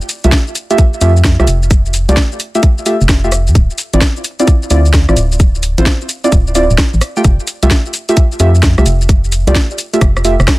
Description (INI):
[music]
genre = UK garage, two-step garage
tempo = 130 BPM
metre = 4/4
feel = swing 66% on 16ths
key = unclear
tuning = A4 = 440 Hz
[part]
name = garage drum kit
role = drums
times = 0.0-10.6 s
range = hi-hat, rim click, shaker, snare drum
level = -17 LUFS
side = equal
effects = overdrive
[part]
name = deep mellow chord stab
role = stabs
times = 0.2-10.3 s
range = A3 to G5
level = -16 LUFS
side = right 1 dB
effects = chorus, dub echo
[part]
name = organ-like FM bass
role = bass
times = 0.2-10.5 s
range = D1 to F2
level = -11 LUFS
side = equal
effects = sidechain pumping
[part]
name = electronic kick drum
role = drums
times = 0.3-10.6 s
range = none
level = -10 LUFS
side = equal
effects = overdrive
[sound]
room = little or no reverb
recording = dense, heavily limited modern master, vinyl crackle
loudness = -9 LUFS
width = side -19 dB against mid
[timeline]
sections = 0.0-10.6 A section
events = drum fill 10.0-10.6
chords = 0.0 Fmaj9; 3.6 Dm9; 7.0 Fmaj9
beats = 0.32 0.78 1.25 | 1.71 2.17 2.63 3.09 | 3.55 4.01 4.48 4.94 | 5.40 5.86 6.32 6.78 | 7.25 7.71 8.17 8.63 | 9.09 9.55 10.01 10.48